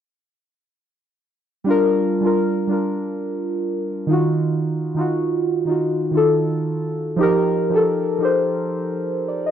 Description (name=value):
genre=hip hop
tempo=87 BPM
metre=4/4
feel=swing 60% on 16ths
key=unclear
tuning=A4 = 437 Hz
part: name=muted felt-like synth keys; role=accompaniment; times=1.6-9.5 s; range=Eb3 to Eb5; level=-18 LUFS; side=equal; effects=chorus, phaser
room=wet studio reverb, RT60 0.5 s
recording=none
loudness=-18 LUFS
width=side -9 dB against mid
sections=1.7-9.5 A section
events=none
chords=1.7 Gm7; 4.1 Ebmadd9; 7.2 F9sus4